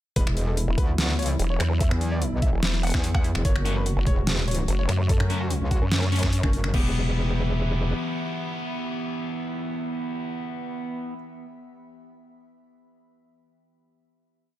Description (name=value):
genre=heavy wobble dubstep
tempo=146 BPM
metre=4/4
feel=half-time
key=E dorian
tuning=A4 = 440 Hz
part: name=clear grand piano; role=melody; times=0.2-11.1 s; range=B3 to F#5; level=-34 LUFS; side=left 2 dB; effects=dub echo
part: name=evolving wavetable pad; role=sustained chords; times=0.5-10.8 s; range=C#3 to B5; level=-34 LUFS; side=left 2 dB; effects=chorus, built-in reverb, sidechain pumping
part: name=metallic wobble bass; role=bass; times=0.2-7.9 s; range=E1 to F#2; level=-25 LUFS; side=equal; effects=chorus, overdrive
part: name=dubstep drum kit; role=drums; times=0.2-6.8 s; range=crash cymbal, finger snaps, hi-hat, snare drum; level=-29 LUFS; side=equal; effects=overdrive
part: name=electronic kick drum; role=drums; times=0.2-6.8 s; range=none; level=-24 LUFS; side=equal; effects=overdrive
part: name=vowel-sweep wobble bass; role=bass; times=0.7-6.4 s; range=E1 to F#2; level=-23 LUFS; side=equal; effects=chorus, overdrive
part: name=fuzz guitar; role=stabs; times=3.7-11.1 s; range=A3 to G4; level=-32 LUFS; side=right 2 dB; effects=distortion, dub echo
room=digital ambience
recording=none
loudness=-22 LUFS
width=side -14 dB against mid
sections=0.2-6.7 drop; 6.7-10.0 final chord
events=drop 0.2-6.7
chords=0.2 Esus2; 3.5 F#m; 6.7 Em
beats=| 0.16 0.57 0.98 1.40 | 1.81 2.22 2.63 3.04 | 3.45 3.86 4.27 4.68 | 5.09 5.50 5.92 6.33 | 6.74 7.15 7.56 7.97 | 8.38 8.79 9.20 9.61